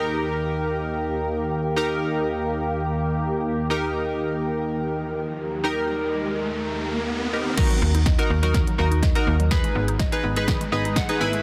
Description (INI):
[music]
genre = dance-pop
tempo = 124 BPM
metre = 4/4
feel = straight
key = G# minor from 7.6 s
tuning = A4 = 439 Hz
[part]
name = chorused retro synth keys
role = accompaniment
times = 0.0-11.4 s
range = D#4 to G#5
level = -28 LUFS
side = equal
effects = sidechain pumping
[part]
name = filtered supersaw swell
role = sustained chords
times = 0.0-7.5 s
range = D#2 to G4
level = -29 LUFS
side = equal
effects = phaser, sidechain pumping
[part]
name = riser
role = sound effects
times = 5.0-11.4 s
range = none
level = -35 LUFS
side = equal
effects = none
[part]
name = mallet-like synth pluck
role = arpeggios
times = 7.6-11.4 s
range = D#3 to D#5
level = -33 LUFS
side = equal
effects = chorus, sidechain pumping, dub echo
[part]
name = punchy analog drum machine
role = drums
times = 7.6-11.4 s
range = crash cymbal, hi-hat, kick drum, snare drum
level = -25 LUFS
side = equal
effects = none
[part]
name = slap-like FM bass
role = bass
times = 7.8-11.4 s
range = G#1 to D#2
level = -25 LUFS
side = equal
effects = sidechain pumping
[sound]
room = light reverb, digital ambience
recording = dense, heavily limited modern master, high-pass filter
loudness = -24 LUFS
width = mono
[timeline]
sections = 0.0-7.6 A section; 7.6-11.4 B section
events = riser 5.0-7.6; build-up 7.6-11.4; drum fill 7.6-11.4; filter sweep 7.6-11.4; synth keys fill 10.5-11.4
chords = 0.0 D#; 7.6 D#m; 9.5 G#m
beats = 0.32 0.80 1.29 | 1.77 2.25 2.74 3.22 | 3.71 4.19 4.67 5.16 | 5.64 6.12 6.61 7.09 | 7.58 8.06 8.54 9.03 | 9.51 10.00 10.48 10.96